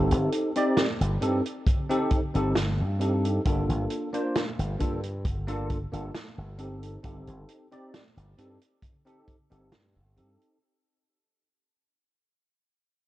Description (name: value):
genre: vaporwave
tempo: 67 BPM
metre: 4/4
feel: straight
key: unclear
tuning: A4 = 442 Hz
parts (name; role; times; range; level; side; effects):
- barky tine electric piano; accompaniment; 0.0-10.6 s; Bb3 to D5; -28 LUFS; equal; ensemble chorus, tape echo
- slap bass with an envelope filter; bass; 0.0-10.4 s; G1 to G2; -28 LUFS; equal; none
- vintage drum kit; drums; 0.1-10.6 s; hi-hat, snare drum; -32 LUFS; right 1 dB; vintage 12-bit sampler grit
- kick drum; drums; 1.7-9.5 s; none; -28 LUFS; equal; vintage 12-bit sampler grit
room: light reverb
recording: dark, warm production, cassette tape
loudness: -25 LUFS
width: side -15 dB against mid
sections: 0.0-10.6 A section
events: fade-out 0.0-10.6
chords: 0.0 Cm6/G; 3.5 Gm9; 6.6 Cm6/G